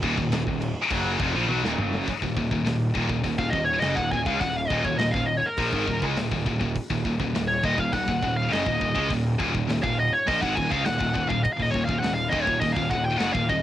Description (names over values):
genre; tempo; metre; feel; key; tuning
heavy metal; 102 BPM; 4/4; straight; Eb minor; A4 = 437 Hz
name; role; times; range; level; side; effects
heavy high-gain guitar; riff; 0.0-13.6 s; Eb2 to Ab3; -30 LUFS; left 7 dB; distortion
heavy high-gain guitar; riff; 0.0-13.6 s; Eb2 to Ab3; -30 LUFS; equal; distortion
sludgy distorted guitar; riff; 0.0-13.6 s; Eb2 to Ab3; -31 LUFS; right 6 dB; overdrive
fuzz picked electric bass; bass; 0.0-13.6 s; Eb1 to Db2; -30 LUFS; equal; overdrive
tight metal drum kit; drums; 0.0-13.6 s; crash cymbal, hi-hat, kick drum, snare drum, toms; -32 LUFS; equal; cassette tape
high-gain lead guitar; melody; 3.4-13.6 s; Bb4 to Ab5; -26 LUFS; equal; distortion, cassette tape
room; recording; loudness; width
little or no reverb; home recording on cassette; -22 LUFS; side -12 dB against mid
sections
0.0-2.1 A section; 2.1-13.6 B section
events
drum fill 1.5-2.1; lead electric guitar solo 2.1-13.6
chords
0.0 Ebm